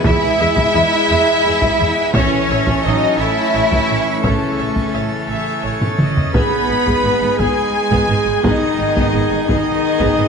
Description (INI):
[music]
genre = cinematic, epic orchestral film score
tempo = 57 BPM (dotted quarters)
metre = 6/8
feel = straight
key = G# phrygian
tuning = A4 = 438 Hz
[part]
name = warm symphonic violin section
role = melody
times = 0.0-10.3 s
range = A4 to B5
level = -25 LUFS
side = left 2 dB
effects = none
[part]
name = warm symphonic violin section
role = second line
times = 0.0-10.3 s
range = A4 to B5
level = -21 LUFS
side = left 2 dB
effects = none
[part]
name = clear trombone section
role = sustained chords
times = 0.0-10.3 s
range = D#3 to C#4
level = -26 LUFS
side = right 2 dB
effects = none
[part]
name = mellow French horn section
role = sustained chords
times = 0.0-10.3 s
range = C#3 to B4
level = -23 LUFS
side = left 4 dB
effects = none
[part]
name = pipe organ, full organ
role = sustained chords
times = 0.0-10.3 s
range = E3 to G#5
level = -24 LUFS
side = equal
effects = none
[part]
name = rich symphonic cello section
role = bass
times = 0.0-10.3 s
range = D#3 to E4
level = -21 LUFS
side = right 2 dB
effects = none
[part]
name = taiko ensemble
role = drums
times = 0.0-10.3 s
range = none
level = -20 LUFS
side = equal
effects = none
[part]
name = rich studio viola section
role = accompaniment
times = 0.1-10.2 s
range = G#3 to E5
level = -24 LUFS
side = right 1 dB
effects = none
[part]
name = rich symphonic double bass section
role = bass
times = 0.1-10.3 s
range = G#1 to E2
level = -24 LUFS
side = right 4 dB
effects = none
[part]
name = clear trumpet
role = stabs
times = 6.3-10.3 s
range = D#4 to B4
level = -23 LUFS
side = right 3 dB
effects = none
[sound]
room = wet scoring stage reverb, RT60 1.8 s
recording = nothing above 11.0 kHz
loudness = -13 LUFS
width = side -6 dB against mid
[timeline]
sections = 0.0-6.3 A section; 6.3-10.3 B section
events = drum fill 5.8-6.3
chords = 0.0 E; 2.1 A; 6.3 G#m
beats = | 0.05 1.10 | 2.15 3.20 | 4.25 5.30 | 6.34 7.39 | 8.44 9.49